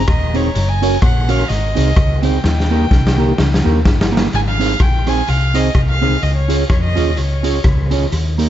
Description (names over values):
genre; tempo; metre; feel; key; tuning
ska; 127 BPM; 4/4; swing 57% on 8ths; Ab major; A4 = 440 Hz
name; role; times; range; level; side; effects
warm violin; melody; 0.0-7.9 s; Db5 to Bb5; -22 LUFS; equal; dub echo
hollow-body short-scale fingered electric bass; bass; 0.0-8.5 s; Eb1 to F2; -16 LUFS; left 1 dB; none
raw garage drum kit; drums; 0.1-8.5 s; hi-hat, kick drum, rim click, snare drum; -17 LUFS; left 1 dB; dub echo
mellow electric guitar; accompaniment; 0.3-8.5 s; Bb3 to Db5; -20 LUFS; right 4 dB; wide subtle chorus
room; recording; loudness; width
little or no reverb; nothing above 7.7 kHz; -13 LUFS; side -12 dB against mid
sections
0.0-4.3 A section; 4.3-8.5 B section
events
drum fill 2.4-4.3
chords
0.0 Ab; 0.6 Gb; 1.5 Ab; 2.4 Eb; 4.3 Ab; 6.2 Db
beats
0.08 | 0.55 1.02 1.49 1.97 | 2.44 2.91 3.38 3.86 | 4.33 4.80 5.28 5.75 | 6.22 6.70 7.17 7.64 | 8.12